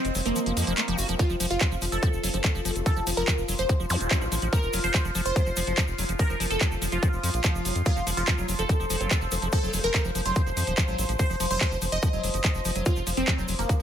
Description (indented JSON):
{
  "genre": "psychedelic trance",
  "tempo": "144 BPM",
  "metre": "4/4",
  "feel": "straight",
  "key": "unclear",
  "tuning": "A4 = 440 Hz",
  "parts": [
    { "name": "supersaw stab", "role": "melody", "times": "0.0-13.8 s", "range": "Bb3 to Eb5", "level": "-30 LUFS", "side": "right 1 dB", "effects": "phaser, sidechain pumping, digital delay" },
    { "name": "overtone-sweeping drone", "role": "sustained chords", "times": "0.0-13.8 s", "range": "F3 to C5", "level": "-34 LUFS", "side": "left 2 dB", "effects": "chorus, built-in reverb, sidechain pumping" },
    { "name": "round analog bass", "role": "bass", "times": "0.0-13.8 s", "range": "Eb1 to F2", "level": "-30 LUFS", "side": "equal", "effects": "none" },
    { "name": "drum and bass drum kit", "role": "drums", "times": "0.0-13.8 s", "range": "handclaps, hi-hat", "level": "-30 LUFS", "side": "equal", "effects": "none" },
    { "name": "granular cloud pad", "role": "texture", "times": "0.0-1.2 s", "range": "F4 to Eb5", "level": "-42 LUFS", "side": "equal", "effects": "none" },
    { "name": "tube shaker", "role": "percussion", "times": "0.1-13.8 s", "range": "none", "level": "-37 LUFS", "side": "right 4 dB", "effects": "none" },
    { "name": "liquid acid bass", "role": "riff", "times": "0.2-13.8 s", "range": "F3 to Gb4", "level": "-33 LUFS", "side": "left 1 dB", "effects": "chorus, auto-pan, sidechain pumping, ping-pong delay" },
    { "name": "electronic kick drum", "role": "drums", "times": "1.2-13.8 s", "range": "none", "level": "-24 LUFS", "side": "equal", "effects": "none" },
    { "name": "vowel-sweep wobble bass", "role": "second line", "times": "2.3-4.2, 9.0-9.8 s", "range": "A3 to F4", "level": "-42 LUFS", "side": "left 4 dB", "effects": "none" },
    { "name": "zap", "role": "sound effects", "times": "3.9-4.0 s", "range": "none", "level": "-34 LUFS", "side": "equal", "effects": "none" }
  ],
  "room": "digital ambience",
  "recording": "none",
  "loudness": "-23 LUFS",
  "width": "side -9 dB against mid",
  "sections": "0.0-1.2 A section; 1.2-13.8 A section",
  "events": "break 0.0-1.2; drop 0.0-1.2, 1.2-13.8",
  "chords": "0.0 F5"
}